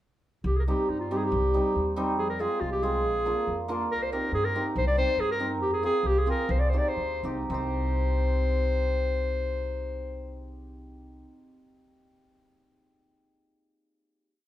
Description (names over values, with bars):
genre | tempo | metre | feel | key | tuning
klezmer | 106-141 BPM | 2/4 | straight | C minor | A4 = 439 Hz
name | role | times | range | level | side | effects
upright bass | bass | 0.4-11.2 s | Bb1 to G2 | -30 LUFS | equal | none
warm clarinet | melody | 0.5-10.5 s | Eb4 to D5 | -28 LUFS | equal | plate reverb
hammered dulcimer | accompaniment | 0.7-11.5 s | G3 to Bb4 | -32 LUFS | right 1 dB | none
room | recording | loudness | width
wet studio reverb, RT60 0.6 s | heard from further back in the room | -25 LUFS | side -13 dB against mid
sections
0.5-7.5 A section; 7.5-9.8 final chord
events
slowing down 5.6-7.5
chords
0.5 Cm; 2.2 Fm; 3.1 Bb; 3.9 Cm; 5.6 Fm; 6.5 Cm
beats
| 0.45 0.89 | 1.32 1.75 | 2.19 2.62 | 3.05 3.48 | 3.91 4.34 | 4.76 5.19 | 5.62 6.05 | 6.50 6.98 | 7.51 8.07 | 8.64 9.21